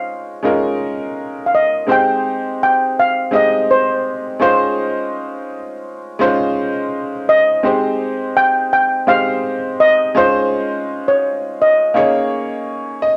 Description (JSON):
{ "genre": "soul", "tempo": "83 BPM", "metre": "4/4", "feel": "straight", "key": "Ab major", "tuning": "A4 = 440 Hz", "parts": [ { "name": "steel pan", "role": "melody", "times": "0.0-13.0 s", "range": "C5 to G5", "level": "-17 LUFS", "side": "equal", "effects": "cassette tape, plate reverb" }, { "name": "clear grand piano", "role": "accompaniment", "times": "0.0-13.2 s", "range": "Ab3 to Eb5", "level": "-21 LUFS", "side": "equal", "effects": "cassette tape, plate reverb" } ], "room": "wet small room reverb, RT60 0.5 s", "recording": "home recording on cassette", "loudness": "-16 LUFS", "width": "mono", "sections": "0.0-13.2 A section", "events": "none", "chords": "0.0 Dbmaj9; 1.9 Abmaj7; 4.4 Dbmaj9; 7.6 Abmaj7; 10.2 Dbmaj9; 12.0 Eb7sus4" }